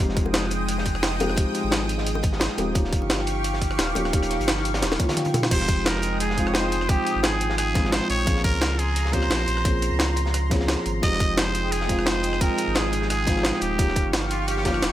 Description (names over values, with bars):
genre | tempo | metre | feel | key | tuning
liquid drum and bass | 174 BPM | 4/4 | swing 53% on 16ths | F minor | A4 = 440 Hz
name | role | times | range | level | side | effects
felt-muted upright piano | accompaniment | 0.0-14.9 s | F3 to G5 | -28 LUFS | equal | digital delay
lush unison pad | sustained chords | 0.0-14.9 s | Ab3 to Eb6 | -30 LUFS | equal | chorus, phaser, sidechain pumping
warm sub bass | bass | 0.0-14.9 s | Eb1 to Db2 | -28 LUFS | equal | none
crunchy breakbeat drum kit | drums | 0.0-14.9 s | hi-hat, snare drum | -33 LUFS | equal | high-pass filter on hats, high-pass filter on snare, high-pass filter on room
electronic kick drum | drums | 0.2-14.7 s | none | -24 LUFS | equal | none
jungle sampler-style drum kit | drums | 0.2-14.9 s | crash cymbal, hi-hat, rim click, snare drum, toms | -26 LUFS | equal | overdrive
bongos | percussion | 0.3-5.4 s | none | -32 LUFS | left 5 dB | none
trumpet with straight mute | melody | 5.5-14.9 s | F4 to Eb5 | -27 LUFS | equal | dub echo
room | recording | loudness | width
light reverb, studio reverb | none | -20 LUFS | side -13 dB against mid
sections
0.0-5.5 A section; 5.5-14.9 A section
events
drop 0.0-5.5, 5.5-14.9; drum fill 4.8-5.5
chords
0.0 Fm9; 2.8 Eb9; 5.5 Fm9; 8.3 Bbm9; 11.0 Fm9; 13.8 Eb9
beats
| 0.00 0.34 0.69 1.03 | 1.38 1.72 2.06 2.41 | 2.75 3.10 3.44 3.79 | 4.13 4.48 4.82 5.17 | 5.51 5.86 6.20 6.55 | 6.89 7.24 7.58 7.93 | 8.27 8.62 8.96 9.31 | 9.65 9.99 10.34 10.69 | 11.03 11.38 11.72 12.06 | 12.41 12.75 13.10 13.44 | 13.79 14.13 14.48 14.82